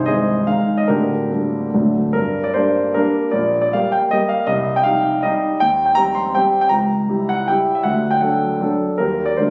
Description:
classical, romantic triple-time dance for piano with dotted rhythms; 136-172 BPM; 3/4; rubato; G minor; A4 = 439 Hz
warm grand piano; solo; 0.0-9.5 s; C1 to C6; -18 LUFS; equal
light reverb; recorded on a phone in the room, club reverb; -18 LUFS; mono
0.0-2.1 A section; 2.1-9.5 B section
0.0 Ab/C; 0.9 Gm/D; 1.7 D; 2.1 Gm; 3.3 Gm/Bb; 4.5 Cm; 5.6 Cm/Eb; 6.7 C#dim7; 7.8 D; 9.0 Eb
0.07 0.48 | 0.88 1.31 1.74 | 2.14 2.55 2.95 | 3.33 3.72 4.11 | 4.47 4.85 5.23 | 5.59 5.95 6.34 | 6.71 7.09 7.47 | 7.84 8.23 8.62 | 9.00 9.38

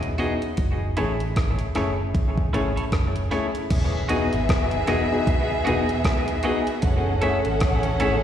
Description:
lovers rock reggae; 77 BPM; 4/4; swing 59% on 16ths; E major; A4 = 440 Hz
electric guitar through a small old amp; arpeggios; 0.0-0.5 s; C#4 to E4; -38 LUFS; left 4 dB
vintage muted fingered electric bass; bass; 0.0-8.2 s; E1 to A1; -26 LUFS; equal
gated 80s digital drum machine; drums; 0.0-8.2 s; crash cymbal, hi-hat, kick drum, rim click; -24 LUFS; equal
warm concert grand piano; accompaniment; 0.2-8.2 s; A3 to G#4; -26 LUFS; left 3 dB; tape echo, slapback echo
twangy electric guitar; stabs; 0.2-8.2 s; E4 to E5; -31 LUFS; right 4 dB; tape echo, slapback echo
rich studio string section; second line; 3.7-8.2 s; B3 to F#5; -26 LUFS; right 1 dB; slapback echo
light reverb; live gig heard through the venue's PA, recital hall reverb; -20 LUFS; side -10 dB against mid
0.0-3.7 A section; 3.7-8.2 B section
0.0 Emaj9; 0.6 F#m7; 3.7 Emaj9; 6.8 F#m7
| 0.58 1.36 2.15 2.93 | 3.71 4.49 5.27 6.05 | 6.83 7.62

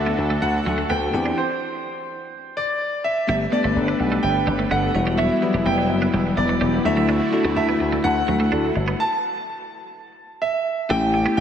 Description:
pop; 126 BPM; 4/4; straight; D major; A4 = 440 Hz
bright concert grand piano; melody; 0.0-11.4 s; C5 to A5; -24 LUFS; right 2 dB; wide subtle chorus, tape echo
bell-like tine electric piano; accompaniment; 0.0-11.4 s; F#3 to A4; -24 LUFS; left 4 dB; ensemble chorus
brassy analog pad; sustained chords; 0.0-11.4 s; D3 to B4; -29 LUFS; right 1 dB; chorus
slap bass with an envelope filter; bass; 0.0-11.4 s; E1 to E2; -24 LUFS; equal
twelve-string electric guitar; riff; 0.1-11.3 s; F#3 to D4; -29 LUFS; right 4 dB; analog chorus, tape echo
mellow synth brass; stabs; 3.5-8.7 s; B3 to A4; -30 LUFS; right 1 dB
wet lush hall reverb, RT60 3.2 s; dreamy mix soaked in reverb; -19 LUFS; side -8 dB against mid
0.0-3.3 A section; 3.3-10.9 B section
stop 1.4-3.3, 9.0-10.9
0.0 D; 1.1 Cadd9/E; 3.3 Gadd9; 4.9 Emadd9; 6.9 Dadd9; 9.0 N.C.; 10.9 A7
0.42 0.90 | 1.38 1.85 2.33 2.81 | 3.28 3.76 4.23 4.71 | 5.19 5.66 6.14 6.62 | 7.09 7.57 8.04 8.52 | 9.00 9.47 9.95 10.43 | 10.90 11.38

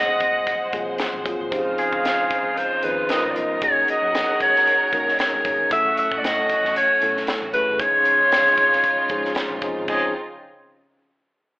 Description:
polished 1980s jazz-funk pop; 115 BPM; 4/4; swing 54% on 16ths; Db major; A4 = 440 Hz
clear alto saxophone; melody; 0.0-10.1 s; Ab4 to E5; -19 LUFS; equal
clear horn section; second line; 0.0-10.1 s; C4 to C6; -28 LUFS; right 1 dB
mellow tine electric piano; accompaniment; 0.0-10.1 s; F3 to Bb4; -28 LUFS; left 1 dB; medium stereo tremolo
rich studio string section; sustained chords; 0.0-10.1 s; Db3 to F#5; -30 LUFS; equal
vintage muted fingered electric bass; bass; 0.0-10.1 s; Gb1 to Db3; -45 LUFS; equal
crisp fusion drum kit; drums; 0.2-10.0 s; crash cymbal, hi-hat, kick drum, snare drum; -29 LUFS; equal
wet large studio reverb, RT60 1.2 s; band playing live in one room, telephone sound; -18 LUFS; side -24 dB against mid
0.0-9.9 A section; 9.9-11.6 B section
0.0 Ab13; 1.5 Dbmaj9; 3.1 Db13; 3.6 Gb69; 5.7 A6; 7.8 Dbmaj9
0.47 0.99 | 1.52 2.05 2.57 3.09 | 3.62 4.14 4.66 5.19 | 5.71 6.23 6.75 7.28 | 7.80 8.32 8.84 9.36 | 9.88

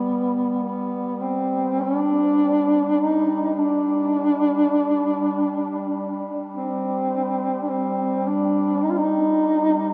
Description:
caucasian folk, Caucasian lament; 51 BPM; 3/4; rubato; A4 = 440 Hz
dark duduk; melody; 0.0-9.9 s; B3 to F4; -22 LUFS; equal
mellow duduk; drone; 0.0-9.9 s; G3; -31 LUFS; equal
wet huge ambient reverb, RT60 7.5 s; in a vast, echoing space; -22 LUFS; mono
0.0-9.9 A section
0.64 1.83 | 3.02 4.17 5.34 | 6.53 7.69 8.84

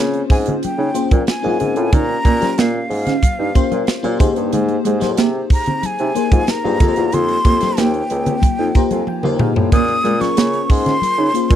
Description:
polished 1980s jazz-funk pop; 92 BPM; 4/4; straight; Bb dorian; A4 = 442 Hz
FM electric piano with soft pad layer; accompaniment; 0.0-11.6 s; Bb3 to Bb5; -21 LUFS; left 5 dB; lush chorus
mellow electric guitar; riff; 0.0-11.6 s; Ab3 to F4; -22 LUFS; right 2 dB; lush chorus
mellow bassoon; bass; 0.0-11.6 s; Db2 to Db3; -21 LUFS; right 1 dB
crisp fusion drum kit; drums; 0.1-11.6 s; hi-hat, kick drum, snare drum, toms; -16 LUFS; right 1 dB
breathy jazz flute; melody; 0.3-11.6 s; F5 to Eb6; -21 LUFS; equal
congas; percussion; 0.3-11.6 s; -26 LUFS; left 3 dB
little or no reverb; dry, close 1970s-style studio recording; -14 LUFS; side -10 dB against mid
0.0-11.6 A section
FM electric piano fill 8.4-9.7; drum fill 9.1-9.7
0.0 Bbm7; 1.9 Eb13 (rootless); 4.2 Abmaj9; 6.8 F9sus4; 9.7 Bbm7
0.63 1.28 | 1.93 2.58 3.23 3.88 | 4.53 5.17 5.83 6.47 | 7.12 7.77 8.42 9.07 | 9.72 10.37 11.02

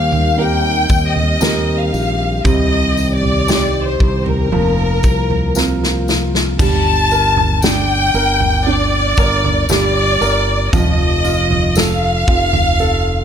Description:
pop ballad; 58 BPM; 4/4; straight; G minor; A4 = 440 Hz
rich studio violin section; melody; 0.0-13.2 s; Bb4 to A5; -17 LUFS; left 2 dB
warm upright piano; accompaniment; 0.0-13.2 s; C3 to Bb4; -21 LUFS; right 6 dB
mellow tonewheel organ; sustained chords; 0.0-6.6 s; C3 to G4; -22 LUFS; left 2 dB; slow rotary speaker
fingered electric bass; bass; 0.0-13.2 s; F1 to Eb2; -19 LUFS; equal
unplugged drum kit; drums; 0.1-12.8 s; crash cymbal, kick drum, snare drum, toms; -18 LUFS; equal
tambourine; percussion; 0.9-13.0 s; -30 LUFS; left 11 dB
small room ambience; -12 LUFS; side -8 dB against mid
0.0-6.6 A section; 6.6-13.2 A section
drum fill 5.6-6.6; upright piano fill 12.8-13.2
0.0 Eb; 2.5 Cm; 4.5 Fsus4; 6.6 Gm; 10.7 F
0.38 1.42 | 2.45 3.49 4.52 5.56 | 6.59 7.62 8.66 9.69 | 10.73 11.76 12.80

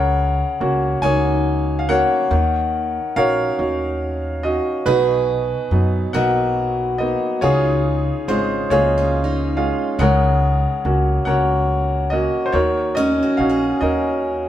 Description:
acoustic folk-pop ballad; 47 BPM (dotted quarters); 6/8; straight; A4 = 441 Hz
bright grand piano; melody; 0.0-14.5 s; Cb3 to Ab5; -18 LUFS; equal
upright bass; bass; 0.0-14.5 s; Ab1 to Gb2; -22 LUFS; equal
picked steel-string acoustic guitar; arpeggios; 1.0-14.5 s; Gb3 to Ab4; -24 LUFS; equal
wet stone room reverb, RT60 1.2 s; band playing live in one room; -16 LUFS; side -11 dB against mid
0.0-14.5 A section
0.0 Gb/Db; 2.3 Ebm7; 4.9 Cbmaj7; 7.4 Db; 10.0 Gb/Db; 12.5 Ebm7
1.03 | 2.31 3.59 | 4.87 6.14 | 7.43 8.71 | 9.99 11.27 | 12.54 13.82

